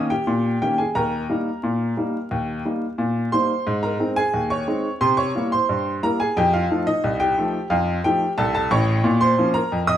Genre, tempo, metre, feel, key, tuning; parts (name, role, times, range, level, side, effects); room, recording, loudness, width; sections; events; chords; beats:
ragtime piano; 89 BPM; 2/4; straight; A4 = 440 Hz
clear upright piano; solo; 0.0-10.0 s; A1 to Eb6; -19 LUFS; equal
wet large studio reverb, RT60 1.1 s; band playing live in one room, vinyl crackle; -19 LUFS; side -10 dB against mid
0.0-10.0 A section
0.0 Eb7; 1.0 Eb; 3.7 Ab; 5.0 C7; 6.4 F7; 9.0 Bbm
0.27 | 0.95 1.63 | 2.31 2.99 | 3.67 4.34 | 5.01 5.69 | 6.36 7.03 | 7.70 8.37 | 9.04 9.71